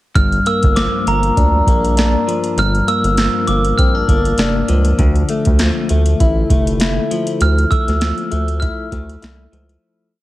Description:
indie pop, bedroom pop; 99 BPM; 4/4; swing 55% on 16ths; G dorian; A4 = 440 Hz
glockenspiel with hard plastic mallets; melody; 0.2-9.5 s; Bb5 to F6; -20 LUFS; right 1 dB; wide subtle chorus, slapback echo, plate reverb
direct-recorded clean electric guitar; accompaniment; 0.2-10.2 s; G2 to E4; -19 LUFS; left 2 dB; lush chorus, vibrato effect, plate reverb
round analog bass; bass; 0.2-9.8 s; F1 to D2; -16 LUFS; equal
soft vintage rhythm box; drums; 0.2-9.8 s; hi-hat, kick drum, snare drum; -17 LUFS; equal; overdrive
light reverb; heavily compressed radio sound; -13 LUFS; side -16 dB against mid
0.2-9.8 verse
fade-out 7.4-9.8
0.2 Gm7; 5.0 Dmadd9
| 0.16 0.76 1.37 1.97 | 2.58 3.18 3.78 4.39 | 4.99 5.60 6.20 6.80 | 7.41 8.01 8.62 9.22

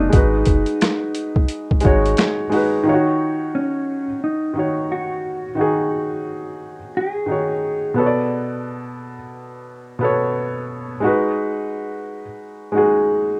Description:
lo-fi hip hop; 88 BPM; 4/4; swing 60% on 16ths; Eb minor; A4 = 440 Hz
mellow electric guitar; melody; 0.0-7.9 s; Db4 to Ab4; -26 LUFS; equal; low-pass filter
felt-muted upright piano; accompaniment; 0.0-13.4 s; B2 to D5; -22 LUFS; equal; cassette tape, low-pass filter, plate reverb
soft dub sub bass; bass; 0.0-2.1 s; Gb1 to Ab1; -23 LUFS; equal
boom bap sampler-style drum kit; drums; 0.1-2.7 s; finger snaps, hi-hat, kick drum, snare drum; -19 LUFS; equal; overdrive
wet studio ambience, RT60 0.5 s; rough home demo mix, cassette tape; -20 LUFS; mono
0.0-2.9 A section; 2.9-13.4 B section
0.1 Abm7; 2.9 Ebm7; 8.0 Bm7; 11.0 Abm7
| 0.13 0.81 1.49 2.18 | 2.86 3.54 4.22 4.90 | 5.58 6.27 6.95 7.63 | 8.31 8.99 9.68 10.36 | 11.04 11.72 12.40 13.09

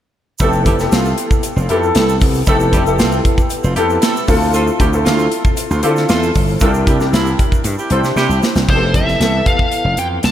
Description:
polished 1980s jazz-funk pop; 116 BPM; 4/4; straight; A4 = 443 Hz
warm horn section; second line; 0.4-8.4 s; E3 to A4; -22 LUFS; right 2 dB
clear grand piano; accompaniment; 0.4-10.3 s; E3 to C5; -18 LUFS; left 2 dB; ensemble chorus, slapback echo
gritty slap bass; bass; 0.4-10.3 s; F1 to D3; -17 LUFS; equal; overdrive
modern studio drum kit; drums; 0.4-10.3 s; crash cymbal, hi-hat, kick drum, snare drum; -16 LUFS; equal
egg shaker; percussion; 0.4-8.7 s; -33 LUFS; right 8 dB
smooth overdriven lead guitar; melody; 8.7-10.3 s; C5 to A5; -17 LUFS; equal
moderate concert hall reverb, RT60 2.2 s; big arena sound; -12 LUFS; side -11 dB against mid
0.4-8.7 A section; 8.7-10.3 B section
drum fill 8.2-8.7
0.4 Fmaj9#11; 4.3 Dm9; 6.6 C7; 8.7 Fmaj9#11
| 0.40 0.92 1.44 1.96 | 2.47 2.99 3.51 4.03 | 4.54 5.06 5.58 6.10 | 6.61 7.13 7.65 8.16 | 8.68 9.20 9.72 10.23

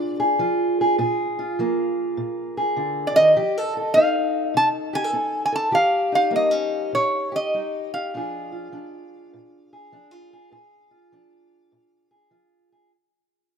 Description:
acoustic country blues, solo or duo; 101 BPM; 4/4; swing 66% on 8ths; Bb mixolydian; A4 = 440 Hz
lap resonator guitar; melody; 0.0-12.3 s; Db5 to A5; -19 LUFS; right 1 dB
fingerpicked steel-string acoustic guitar; accompaniment; 0.0-12.9 s; Bb2 to A4; -24 LUFS; left 1 dB
moderate plate reverb, RT60 3.6 s; rough home demo mix; -19 LUFS; side -7 dB against mid
0.0-12.9 A section
fade-out 0.0-12.9
0.0 Bb7; 3.4 F7; 5.7 Eb7; 8.1 Bb7
0.40 | 1.00 1.59 2.18 2.77 | 3.37 3.96 4.56 5.15 | 5.75 6.34 6.94 7.54 | 8.13 8.73 9.33 9.93 | 10.53 11.13 11.73 12.33

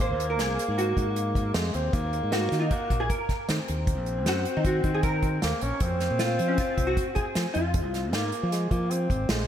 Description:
progressive instrumental, band music in an uneven meter; 155 BPM; 5/4; straight; F phrygian; A4 = 440 Hz
vintage hollow-body jazz guitar; melody; 0.0-9.2 s; Db4 to C5; -31 LUFS; equal; ensemble chorus, ping-pong delay
breathy alto saxophone; second line; 0.0-9.5 s; Ab3 to Db4; -30 LUFS; left 1 dB; ping-pong delay
modern bright fingered electric bass; bass; 0.0-9.5 s; Ab1 to F3; -28 LUFS; equal
unplugged drum kit; drums; 0.0-9.4 s; hi-hat, kick drum, snare drum; -29 LUFS; equal
moderate lush hall reverb, RT60 1.9 s; dreamy mix soaked in reverb; -24 LUFS; side -10 dB against mid
0.0-9.5 A section
0.0 Ab; 1.9 Ebm; 5.8 Fm
| 0.00 0.39 0.78 1.16 1.55 | 1.94 2.33 2.71 3.10 3.49 | 3.87 4.26 4.65 5.04 5.42 | 5.81 6.20 6.58 6.97 7.36 | 7.75 8.13 8.52 8.90 9.29

